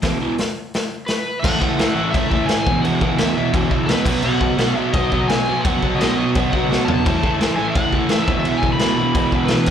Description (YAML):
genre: garage rock duo or trio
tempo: 171 BPM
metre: 4/4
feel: straight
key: E major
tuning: A4 = 440 Hz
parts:
  - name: crunchy overdriven guitar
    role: riff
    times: 0.0-9.7 s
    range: E2 to B3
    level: -18 LUFS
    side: right 1 dB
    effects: slapback echo
  - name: raw garage drum kit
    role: drums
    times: 0.0-9.7 s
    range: crash cymbal, hi-hat, kick drum, snare drum, toms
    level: -20 LUFS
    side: equal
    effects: none
  - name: overdriven slide guitar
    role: melody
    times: 1.1-9.7 s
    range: B4 to B5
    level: -24 LUFS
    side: left 1 dB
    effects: plate reverb
room: light reverb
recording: live gig heard through the venue's PA, club reverb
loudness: -16 LUFS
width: side -8 dB against mid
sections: 0.0-1.4 A section; 1.4-9.7 B section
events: drum fill 6.7-7.0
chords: 0.0 E5; 1.4 A5; 2.7 E5; 4.1 B; 7.0 A5; 8.3 E5